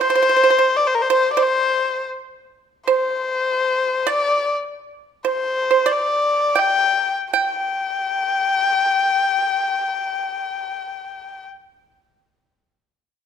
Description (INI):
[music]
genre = chinese traditional, Chinese chamber ensemble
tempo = 71-104 BPM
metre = 2/4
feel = straight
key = unclear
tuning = A4 = 440 Hz
[part]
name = warm erhu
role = melody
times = 0.0-11.4 s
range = Bb4 to G5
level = -18 LUFS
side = left 4 dB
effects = none
[part]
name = pipa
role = second line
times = 0.0-11.9 s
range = C5 to G5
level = -20 LUFS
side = right 8 dB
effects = none
[sound]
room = moderate recital hall reverb, RT60 1.5 s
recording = none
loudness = -17 LUFS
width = side -8 dB against mid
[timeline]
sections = 0.0-7.3 A section; 7.3-10.7 B section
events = slowing down 4.7-7.3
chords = none